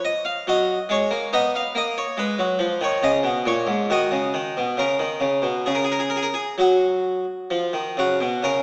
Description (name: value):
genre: classical, baroque-style suite movement for harpsichord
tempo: 64-71 BPM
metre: 3/4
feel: rubato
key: F# major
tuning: A4 = 440 Hz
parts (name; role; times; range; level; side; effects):
- harpsichord; solo; 0.0-8.6 s; G#2 to E#5; -22 LUFS; equal; none
room: wet concert hall reverb, RT60 1.9 s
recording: small speaker sound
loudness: -22 LUFS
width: mono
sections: 0.0-8.6 A section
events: none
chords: 0.4 F#; 1.3 B; 3.0 C#5; 3.9 D#m; 4.8 Bmaj9; 5.7 N.C.; 6.6 F#